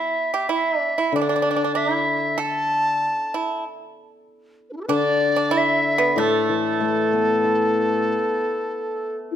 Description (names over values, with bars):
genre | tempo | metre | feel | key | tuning
chinese traditional, Chinese chamber ensemble | 95 BPM | 4/4 | rubato | unclear | A4 = 438 Hz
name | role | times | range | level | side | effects
bright reedy large dizi | melody | 0.0-9.2 s | D4 to A5 | -22 LUFS | left 1 dB | none
pipa | second line | 0.0-9.4 s | A3 to A4 | -25 LUFS | right 5 dB | none
hammered dulcimer | accompaniment | 1.1-8.7 s | A2 to E4 | -24 LUFS | left 4 dB | none
mellow hollow xiao | second line | 9.3-9.4 s | E4 | -24 LUFS | left 7 dB | none
room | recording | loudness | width
moderate recital hall reverb, RT60 1.4 s | close, detailed microphones | -19 LUFS | side -10 dB against mid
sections
0.0-9.4 A section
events
none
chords
none